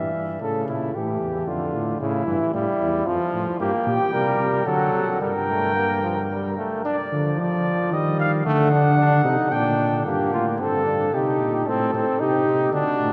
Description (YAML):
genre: classical, imitative canzona for brass ensemble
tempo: 113 BPM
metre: 3/4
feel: straight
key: G minor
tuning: A4 = 440 Hz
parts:
  - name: mellow trumpet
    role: melody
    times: 0.0-0.4, 3.6-10.1 s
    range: D5 to G5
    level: -30 LUFS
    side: equal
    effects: none
  - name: bright trombone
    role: accompaniment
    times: 0.0-13.1 s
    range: C#3 to Eb4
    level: -27 LUFS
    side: equal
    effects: none
  - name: mellow tuba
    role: bass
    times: 0.0-13.1 s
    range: E2 to F3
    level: -27 LUFS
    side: equal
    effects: none
  - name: mellow flugelhorn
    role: second line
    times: 0.4-6.6, 10.1-13.1 s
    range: E4 to Bb4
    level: -28 LUFS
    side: equal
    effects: none
room: wet cathedral reverb, RT60 6.3 s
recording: none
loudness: -22 LUFS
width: mono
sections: 0.0-6.9 A section; 6.9-10.1 B section; 10.1-13.1 A section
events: none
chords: 0.4 A; 1.5 Dm/F; 2.0 A; 3.1 F; 3.6 Gm; 4.1 C5; 4.7 D; 5.2 Gm; 6.9 Dm; 7.9 Ebadd9; 8.5 D; 9.5 Gm/Bb; 10.1 Gmadd9; 11.1 Cm; 11.7 Adim